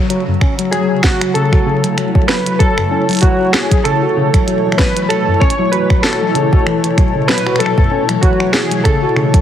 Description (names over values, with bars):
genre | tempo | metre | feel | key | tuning
IDM | 96 BPM | 4/4 | swing 56% on 16ths | unclear | A4 = 441 Hz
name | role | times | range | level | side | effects
granular cloud pad | sustained chords | 0.0-9.4 s | B2 to C#5 | -19 LUFS | left 1 dB | built-in reverb
tine electric piano | arpeggios | 0.0-9.4 s | F#2 to F#4 | -18 LUFS | left 2 dB | medium stereo tremolo, ping-pong delay
glitchy drum kit | drums | 0.1-9.4 s | finger snaps, hi-hat, snare drum | -20 LUFS | right 1 dB | none
electronic kick drum | drums | 0.4-9.4 s | none | -13 LUFS | equal | none
warbly lo-fi synth keys | melody | 0.7-9.4 s | F#4 to C#5 | -18 LUFS | equal | chorus, tape echo
room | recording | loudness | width
light reverb | heavily compressed radio sound, multiband compression, faint mains hum | -11 LUFS | side -10 dB against mid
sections
0.0-9.4 A section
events
none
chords
0.0 F#m; 2.6 Asus2